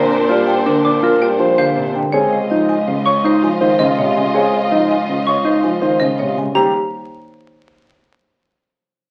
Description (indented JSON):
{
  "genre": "classical, minimalist pattern music",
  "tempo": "163 BPM",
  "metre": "6/4",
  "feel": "straight",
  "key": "Eb major",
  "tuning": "A4 = 441 Hz",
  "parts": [
    { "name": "marimba with medium hard mallets", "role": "melody", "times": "0.0-6.7 s", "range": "G4 to Ab5", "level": "-23 LUFS", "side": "equal", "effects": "none" },
    { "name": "dark concert grand piano", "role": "accompaniment", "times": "0.0-6.7 s", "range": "C3 to C4", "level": "-24 LUFS", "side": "equal", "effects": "none" },
    { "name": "rich symphonic violin section", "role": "sustained chords", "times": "0.0-6.3 s", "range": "D4 to Eb5", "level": "-23 LUFS", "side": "equal", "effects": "none" },
    { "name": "mellow electric guitar", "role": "arpeggios", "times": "0.0-6.7 s", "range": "D4 to C5", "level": "-20 LUFS", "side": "equal", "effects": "none" },
    { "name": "rich cello", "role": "bass", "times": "0.0-6.7 s", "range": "Db2 to Bb2", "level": "-27 LUFS", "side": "equal", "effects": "none" },
    { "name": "xylophone with plastic mallets", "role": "arpeggios", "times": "0.8-6.7 s", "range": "Eb5 to D6", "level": "-23 LUFS", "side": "equal", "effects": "none" }
  ],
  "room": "wet large studio reverb, RT60 0.9 s",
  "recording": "very old 78 rpm record, vinyl crackle",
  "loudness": "-16 LUFS",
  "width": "mono",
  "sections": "0.0-6.6 A section; 6.6-8.8 B section",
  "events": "none",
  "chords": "0.0 Bbadd9; 2.1 Dbadd9; 6.6 Eb"
}